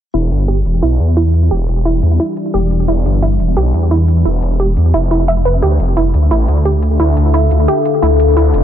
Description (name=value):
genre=dark technical drum and bass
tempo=175 BPM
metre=4/4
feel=straight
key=E phrygian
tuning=A4 = 440 Hz
part: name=deep dark ambient pad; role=sustained chords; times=1.6-8.6 s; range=D4 to F5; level=-19 LUFS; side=left 3 dB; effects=chorus, built-in reverb
part: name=wide unison pluck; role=arpeggios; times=0.1-8.4 s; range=E4 to E5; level=-18 LUFS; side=right 3 dB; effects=tape echo
part: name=snarling distorted saw bass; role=bass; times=0.1-8.6 s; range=E1 to E2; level=-12 LUFS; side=equal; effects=distortion, overdrive
part: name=electronic hi-hat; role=drums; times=0.1-8.6 s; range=none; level=-45 LUFS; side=left 2 dB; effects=none
room=little or no reverb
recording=low-pass filter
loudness=-11 LUFS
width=side -10 dB against mid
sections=0.1-8.6 A section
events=filter sweep on ambient pad 0.1-8.6; filter sweep on synth arpeggio sound 0.1-8.6; filter sweep 0.1-8.6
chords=0.1 Em7; 5.6 Dmadd9